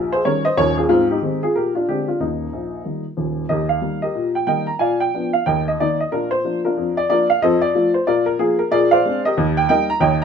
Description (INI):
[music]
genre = jazz, stride piano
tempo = 184 BPM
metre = 4/4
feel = swing 62% on 8ths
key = Eb major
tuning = A4 = 439 Hz
[part]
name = dark upright piano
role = solo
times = 0.0-10.2 s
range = Eb1 to Bb5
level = -16 LUFS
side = equal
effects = none
[sound]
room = wet studio reverb, RT60 0.6 s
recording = minimal, uncompressed stereo recording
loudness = -16 LUFS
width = side -7 dB against mid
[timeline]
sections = 0.0-3.5 A section; 3.5-10.2 B section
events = none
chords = 0.0 Eb7; 0.9 Ab; 1.5 Bb13; 2.2 Eb; 4.8 Bb; 5.5 Eb5; 6.1 Bb; 7.4 F; 8.1 Bb5; 8.7 Bb9; 9.4 Eb